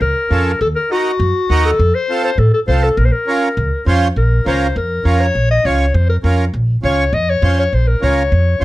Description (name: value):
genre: latin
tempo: 202 BPM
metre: 4/4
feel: straight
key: Bb harmonic minor, Bb minor from 4.2 s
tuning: A4 = 440 Hz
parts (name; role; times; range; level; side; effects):
- clear clarinet; melody; 0.0-8.6 s; Gb4 to Eb5; -17 LUFS; left 2 dB; none
- upright bass; bass; 0.0-8.6 s; Bb1 to A2; -14 LUFS; equal; none
- accordion; accompaniment; 0.3-8.6 s; C4 to Db5; -18 LUFS; right 3 dB; none
room: light reverb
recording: none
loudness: -12 LUFS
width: side -17 dB against mid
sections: 0.0-4.2 A section; 4.2-8.6 B section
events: none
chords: 0.0 Bbm; 0.6 Ebm; 1.8 F; 3.0 Bbm